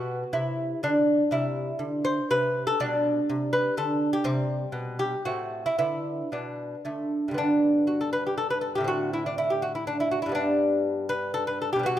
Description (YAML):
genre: classical, baroque-style dance for lute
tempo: 121 BPM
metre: 3/4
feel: rubato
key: G major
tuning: A4 = 441 Hz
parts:
  - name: lute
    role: solo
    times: 0.0-12.0 s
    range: G2 to C5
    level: -24 LUFS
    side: equal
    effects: none
room: moderate recital hall reverb, RT60 1.5 s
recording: none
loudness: -24 LUFS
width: side -11 dB against mid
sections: 0.0-7.4 A section; 7.4-12.0 A section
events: none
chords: 0.0 Bmadd11; 1.3 C; 2.8 G/B; 4.3 C5; 5.3 Am; 5.8 Bmadd11; 6.8 D5; 7.4 G; 8.9 D5/A; 10.4 G